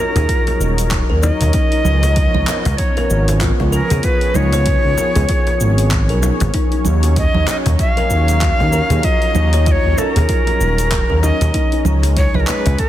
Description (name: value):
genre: organic downtempo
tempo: 96 BPM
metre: 4/4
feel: swing 58% on 16ths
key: Eb minor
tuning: A4 = 440 Hz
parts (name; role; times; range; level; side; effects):
- breathy bright Native American-style cedar flute; melody; 0.0-12.9 s; Bb4 to F5; -20 LUFS; equal; digital delay
- warm analog pad; sustained chords; 0.0-12.9 s; F3 to Bb5; -24 LUFS; right 1 dB; chorus, sidechain pumping
- kalimba; arpeggios; 0.0-12.5 s; Eb4 to Eb5; -24 LUFS; left 3 dB; digital delay
- smooth gliding synth bass; bass; 0.2-12.8 s; Eb1 to Eb2; -16 LUFS; equal; tube saturation, sidechain pumping
- deep house drum kit; drums; 0.2-12.9 s; cabasa, congas, handclaps, hi-hat; -24 LUFS; right 3 dB; soft clipping on snare, small room reverb
- cajon; percussion; 0.2-12.8 s; none; -23 LUFS; left 2 dB; none
- electronic kick drum; drums; 0.3-12.9 s; none; -19 LUFS; equal; small room reverb
room: little or no reverb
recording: dense, heavily limited modern master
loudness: -13 LUFS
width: side -13 dB against mid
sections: 0.0-12.9 A section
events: none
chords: 0.0 Ebm7; 1.5 Db7; 6.5 Ebm7; 11.5 Db7(no3)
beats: 0.29 0.92 | 1.54 2.17 2.79 3.42 | 4.04 4.67 5.29 5.92 | 6.54 7.17 7.79 8.41 | 9.04 9.66 10.29 10.91 | 11.54 12.16 12.79